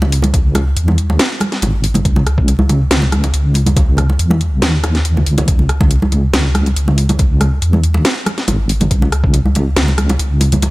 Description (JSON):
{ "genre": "deep dubstep", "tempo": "140 BPM", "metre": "4/4", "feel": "swing 53% on 16ths, half-time", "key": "C# minor", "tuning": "A4 = 440 Hz", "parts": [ { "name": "deep soft wobble bass", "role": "bass", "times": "0.0-10.7 s", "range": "G#1 to E2", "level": "-13 LUFS", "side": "equal", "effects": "chorus" }, { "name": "congas", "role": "percussion", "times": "0.0-10.7 s", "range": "none", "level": "-19 LUFS", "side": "right 1 dB", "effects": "dub echo" }, { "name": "garage drum kit", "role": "drums", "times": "0.1-10.7 s", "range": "hi-hat, rim click, snare drum", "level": "-18 LUFS", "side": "equal", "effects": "none" }, { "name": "electronic kick drum", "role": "drums", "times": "0.3-9.3 s", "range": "none", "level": "-14 LUFS", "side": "equal", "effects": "none" } ], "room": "little or no reverb", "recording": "vinyl crackle", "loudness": "-11 LUFS", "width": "side -20 dB against mid", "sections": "0.0-10.7 A section", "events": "none", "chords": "none" }